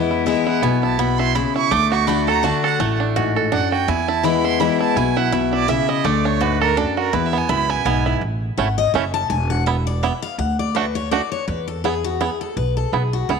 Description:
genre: bluegrass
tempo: 166 BPM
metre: 3/4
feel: swing 56% on 8ths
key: E mixolydian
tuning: A4 = 441 Hz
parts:
  - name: bluegrass banjo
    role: melody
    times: 0.0-13.4 s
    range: A3 to A4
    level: -22 LUFS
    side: right 10 dB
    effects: none
  - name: picked steel-string acoustic guitar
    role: accompaniment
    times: 0.0-13.4 s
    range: E2 to A5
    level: -21 LUFS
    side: left 10 dB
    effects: none
  - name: upright bass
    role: bass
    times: 0.0-13.4 s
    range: E1 to E2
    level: -23 LUFS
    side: right 1 dB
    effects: none
  - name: clear fiddle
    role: melody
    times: 0.3-8.1 s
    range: A4 to D6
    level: -22 LUFS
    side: right 9 dB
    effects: none
room: moderate echo chamber reverb, RT60 1.8 s, small room reverb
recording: 1960s-style stereo with parts hard left and right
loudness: -17 LUFS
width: side -5 dB against mid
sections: 0.0-8.2 A section; 8.2-13.4 A section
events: fiddle solo 0.0-8.2; steel-string acoustic guitar solo 8.2-13.4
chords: 0.0 E; 1.7 D; 3.9 E; 6.1 D; 7.1 E; 8.2 A5; 9.3 E5; 10.4 D; 11.5 E

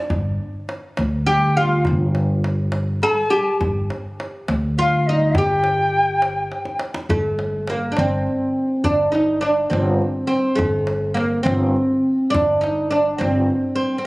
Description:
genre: Persian modal ensemble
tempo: 69 BPM (dotted quarters)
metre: 6/8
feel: straight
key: G dastgah shur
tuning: A4 = 444 Hz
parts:
  - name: upright bass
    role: bass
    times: 0.1-13.5 s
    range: G1 to D2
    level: -22 LUFS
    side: equal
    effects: none
  - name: tombak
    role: percussion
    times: 0.1-13.6 s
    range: none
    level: -27 LUFS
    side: equal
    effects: none
  - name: oud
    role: melody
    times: 1.3-14.1 s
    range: Ab3+45c to Ab4+45c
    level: -20 LUFS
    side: equal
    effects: none
  - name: breathy bright ney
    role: second line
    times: 1.3-6.8 s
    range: Eb5 to Bb5+45c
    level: -20 LUFS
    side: left 1 dB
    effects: none
room: light reverb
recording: recorded on a phone in the room, club reverb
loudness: -17 LUFS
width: side -22 dB against mid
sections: 0.0-7.1 A section; 7.1-14.1 B section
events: drum fill 6.5-7.1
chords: none

